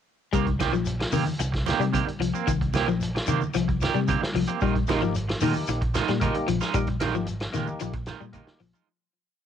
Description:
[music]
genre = afrobeat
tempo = 112 BPM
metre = 4/4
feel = straight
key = C minor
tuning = A4 = 441 Hz
[part]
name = electric guitar at the edge of break-up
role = arpeggios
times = 0.3-8.8 s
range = Eb3 to G3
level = -28 LUFS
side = left 9 dB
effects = ensemble chorus, tape echo
[part]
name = electric guitar at the edge of break-up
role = stabs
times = 0.3-8.9 s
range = Eb3 to G4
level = -29 LUFS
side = right 11 dB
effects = tremolo
[part]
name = fingered electric bass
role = bass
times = 0.3-8.7 s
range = Ab1 to C3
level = -29 LUFS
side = right 1 dB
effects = none
[part]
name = vintage drum kit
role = drums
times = 0.3-8.9 s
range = hi-hat, kick drum, snare drum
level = -30 LUFS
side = right 1 dB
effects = cassette tape
[part]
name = shekere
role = percussion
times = 0.3-8.9 s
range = none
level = -39 LUFS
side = left 5 dB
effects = none
[part]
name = claves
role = percussion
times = 0.6-8.7 s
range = none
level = -41 LUFS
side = left 12 dB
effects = none
[part]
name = congas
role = percussion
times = 0.6-8.7 s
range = none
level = -34 LUFS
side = right 8 dB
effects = none
[part]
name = percussive tonewheel organ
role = accompaniment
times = 4.6-8.6 s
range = Bb3 to G4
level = -32 LUFS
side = equal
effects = slow rotary speaker, overdrive
[sound]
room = small room ambience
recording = home recording on cassette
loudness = -23 LUFS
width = side -9 dB against mid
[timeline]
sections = 0.3-8.9 groove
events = fade-out 6.8-8.9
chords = 0.3 Cm7; 4.6 Bb7sus4

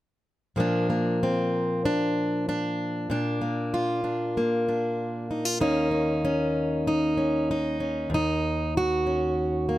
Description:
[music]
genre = folk, solo fingerstyle acoustic guitar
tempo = 96 BPM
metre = 4/4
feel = straight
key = unclear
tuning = A4 = 440 Hz
[part]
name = fingerpicked plugged-in steel-string acoustic guitar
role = solo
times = 0.6-9.8 s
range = Eb2 to Gb4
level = -24 LUFS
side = equal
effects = none
[sound]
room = light reverb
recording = close, detailed microphones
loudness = -24 LUFS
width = side -15 dB against mid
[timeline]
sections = 0.6-9.8 A section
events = none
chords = 0.6 Bb; 5.6 Ebm7

